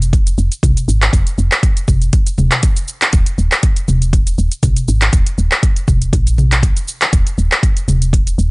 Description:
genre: afro house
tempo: 120 BPM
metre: 4/4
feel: swing 54% on 16ths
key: unclear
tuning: A4 = 440 Hz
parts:
  - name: woody FM bass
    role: bass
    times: 0.0-8.5 s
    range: Eb1 to C2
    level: -15 LUFS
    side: equal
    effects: sidechain pumping
  - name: afro-pop drum kit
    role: drums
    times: 0.0-8.5 s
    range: handclaps, hi-hat, shaker, toms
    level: -16 LUFS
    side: equal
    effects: none
  - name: electronic kick drum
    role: drums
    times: 0.1-8.2 s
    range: none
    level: -13 LUFS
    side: equal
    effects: none
room: little or no reverb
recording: dry, gritty hardware recording, nothing above 10.9 kHz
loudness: -11 LUFS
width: side -28 dB against mid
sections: 0.0-8.5 A section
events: none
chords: none

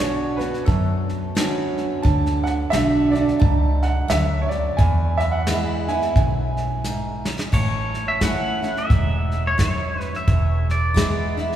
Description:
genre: honky-tonk and classic country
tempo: 88 BPM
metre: 4/4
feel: swing 60% on 8ths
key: A major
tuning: A4 = 439 Hz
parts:
  - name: bright upright piano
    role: second line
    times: 0.0-7.2 s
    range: A4 to A5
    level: -26 LUFS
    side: right 2 dB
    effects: none
  - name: picked steel-string acoustic guitar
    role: accompaniment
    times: 0.0-11.6 s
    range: E2 to F#4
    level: -24 LUFS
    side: right 1 dB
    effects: none
  - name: vintage muted fingered electric bass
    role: bass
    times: 0.0-11.5 s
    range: E1 to F#2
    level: -24 LUFS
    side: equal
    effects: none
  - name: soft brush drum kit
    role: drums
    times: 0.4-11.6 s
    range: crash cymbal, hi-hat, kick drum, snare drum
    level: -23 LUFS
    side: equal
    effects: none
  - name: pedal steel guitar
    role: melody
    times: 7.5-11.3 s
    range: C#5 to F#5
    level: -25 LUFS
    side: equal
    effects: none
room: wet church reverb, RT60 3.7 s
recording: recorded in a church or concert hall, small room ambience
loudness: -18 LUFS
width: side -11 dB against mid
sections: 0.0-7.5 A section; 7.5-11.6 B section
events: upright piano solo 0.0-7.5; drum fill 6.8-7.5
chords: 0.0 Bmadd9; 2.0 D; 4.8 E; 7.5 A; 10.3 E

